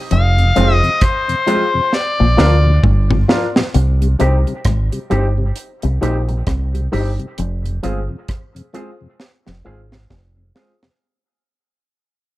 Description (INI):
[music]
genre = roots reggae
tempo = 66 BPM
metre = 4/4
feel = swing 59% on 16ths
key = unclear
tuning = A4 = 443 Hz
[part]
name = overdriven harmonica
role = melody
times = 0.1-2.8 s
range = C5 to F5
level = -17 LUFS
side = left 2 dB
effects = dub echo
[part]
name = electric guitar with an envelope filter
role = riff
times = 0.1-10.4 s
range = F2 to D3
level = -24 LUFS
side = left 4 dB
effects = analog chorus
[part]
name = deep dub fingered electric bass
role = bass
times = 0.1-10.5 s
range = F1 to D2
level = -15 LUFS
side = equal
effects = none
[part]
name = deep reggae drum kit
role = drums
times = 0.1-11.0 s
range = hi-hat, kick drum, rim click, snare drum, toms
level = -18 LUFS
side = equal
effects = none
[part]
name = mellow tonewheel organ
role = accompaniment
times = 0.4-10.9 s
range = F2 to Ab4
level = -25 LUFS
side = left 2 dB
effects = chorus vibrato, slow rotary speaker
[part]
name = electric guitar with an envelope filter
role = accompaniment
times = 0.6-10.7 s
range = F3 to Ab4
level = -26 LUFS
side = right 4 dB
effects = dub echo
[part]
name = dark upright piano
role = stabs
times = 0.6-10.7 s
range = Eb4 to D5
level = -23 LUFS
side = left 3 dB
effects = none
[sound]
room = studio ambience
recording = none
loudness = -13 LUFS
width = side -17 dB against mid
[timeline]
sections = 0.0-3.7 A section; 3.7-11.0 B section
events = drum fill 1.9-3.7, 9.2-11.0; fade-out 3.7-11.0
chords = 0.1 Fm; 1.9 Bb; 3.7 Cm; 7.4 Fm